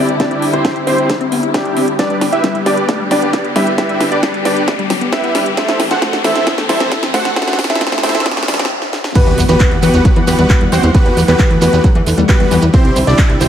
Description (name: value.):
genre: uplifting trance.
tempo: 134 BPM.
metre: 4/4.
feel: straight.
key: unclear.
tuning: A4 = 440 Hz.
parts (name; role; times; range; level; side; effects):
supersaw chords; melody; 0.0-13.5 s; G3 to F#5; -17 LUFS; right 1 dB; sidechain pumping, low-pass filter, ping-pong delay.
clear grand piano; second line; 0.0-13.5 s; G4 to F#5; -21 LUFS; equal; sidechain pumping, ping-pong delay.
rich chamber string section; sustained chords; 0.0-13.5 s; D3 to F#5; -21 LUFS; right 1 dB; sidechain pumping.
analog pluck; arpeggios; 0.0-13.4 s; D3 to E4; -22 LUFS; left 4 dB; chorus, sidechain pumping, ping-pong delay.
riser, noise sweep and impact; sound effects; 0.0-10.9 s; none; -23 LUFS; equal; none.
house drum kit; drums; 0.1-13.5 s; crash cymbal, handclaps, hi-hat, snare drum; -19 LUFS; right 1 dB; sidechain pumping on hats, sidechain pumping on cymbals.
electronic kick drum; drums; 0.2-13.3 s; none; -12 LUFS; equal; high-pass filter on kick.
shekere; percussion; 9.1-13.5 s; none; -26 LUFS; right 6 dB; none.
plucky analog bass; bass; 9.3-13.5 s; C2 to E2; -14 LUFS; equal; sidechain pumping.
room: light reverb, digital ambience.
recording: high-pass filter.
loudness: -11 LUFS.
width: side -9 dB against mid.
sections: 0.0-9.2 A section; 9.2-13.5 B section.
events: build-up 0.0-9.2; drum fill 0.0-8.7, 8.8-9.2; riser 0.0-8.7; filter sweep on supersaw synth 0.0-9.2; filter sweep on synth pluck 0.0-9.2; filter sweep 0.0-9.2; noise sweep 7.4-9.2; stop 8.7-9.2; drop 9.2-13.5; impact 9.2-10.9.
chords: 0.0 Cadd9; 2.0 G; 5.6 Am7; 9.2 Emadd9; 12.7 Cadd9.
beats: | 0.20 0.65 1.09 1.54 | 1.99 2.44 2.89 3.33 | 3.78 4.23 4.68 5.12 | 5.57 6.02 6.47 6.92 | 7.36 7.81 8.26 8.71 | 9.15 9.60 10.05 10.50 | 10.95 11.39 11.84 12.29 | 12.74 13.19.